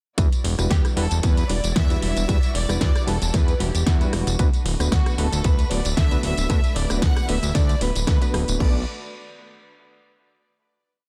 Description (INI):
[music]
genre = nu-disco, nu disco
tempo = 114 BPM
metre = 4/4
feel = swing 54% on 16ths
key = B minor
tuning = A4 = 440 Hz
[part]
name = bright reed electric piano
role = accompaniment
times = 0.2-8.8 s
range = G3 to B4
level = -32 LUFS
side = equal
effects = fast tremolo, sidechain pumping, delay
[part]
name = warm studio string section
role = sustained chords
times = 0.2-8.8 s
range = G3 to D5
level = -39 LUFS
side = equal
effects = none
[part]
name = fat analog bass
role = bass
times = 0.2-8.8 s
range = D1 to E2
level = -26 LUFS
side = equal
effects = none
[part]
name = pop drum kit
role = drums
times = 0.2-8.7 s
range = crash cymbal, kick drum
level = -23 LUFS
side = equal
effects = small room ambience
[part]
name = pop drum kit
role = drums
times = 0.2-8.6 s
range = hi-hat, rim click, snare drum, tambourine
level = -30 LUFS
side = equal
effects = small room ambience
[part]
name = clear studio violin section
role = melody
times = 0.7-8.8 s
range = F#4 to F#5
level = -34 LUFS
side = equal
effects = delay
[sound]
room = digital ambience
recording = dense, heavily limited modern master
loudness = -21 LUFS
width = mono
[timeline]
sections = 0.2-8.6 drop; 8.6-10.7 final chord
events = drop 0.2-8.6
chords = 0.2 Em9; 4.4 Bm7/D; 8.6 Bm7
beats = | 0.18 0.71 1.23 1.76 | 2.29 2.81 3.34 3.87 | 4.39 4.92 5.44 5.97 | 6.50 7.02 7.55 8.08 | 8.60